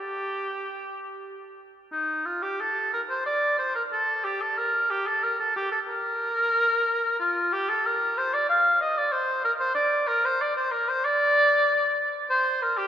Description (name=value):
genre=classical, baroque-style fantasia for unaccompanied oboe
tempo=92 BPM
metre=4/4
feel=uneven beats, rubato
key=G minor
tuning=A4 = 440 Hz
part: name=warm oboe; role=solo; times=0.0-12.9 s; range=Eb4 to F5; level=-22 LUFS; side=equal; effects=none
room=wet cathedral reverb, RT60 4.6 s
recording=recorded in a church or concert hall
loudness=-22 LUFS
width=side -10 dB against mid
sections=0.0-1.9 A section; 1.9-12.9 B section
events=none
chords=none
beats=0.55 1.23 | 1.92 2.59 3.25 3.92 | 4.58 5.24 5.90 6.55 | 7.20 7.86 8.50 9.13 | 9.77 10.41 11.05 11.68 | 12.30